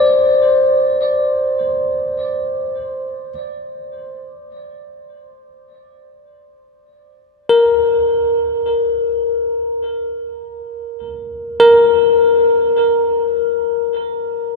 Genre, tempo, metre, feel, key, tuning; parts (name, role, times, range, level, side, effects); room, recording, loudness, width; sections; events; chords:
ambient; free time; A4 = 441 Hz
barky tine electric piano; solo; 0.0-14.6 s; Bb4 to D5; -14 LUFS; moving between left 7 dB and right 4 dB; auto-pan, diffuse ambient delay
wet cathedral reverb, RT60 6.6 s; in a vast, echoing space; -13 LUFS; side -2 dB against mid
0.0-7.5 A section; 7.5-14.6 B section
0.0 Csus2; 2.8 N.C.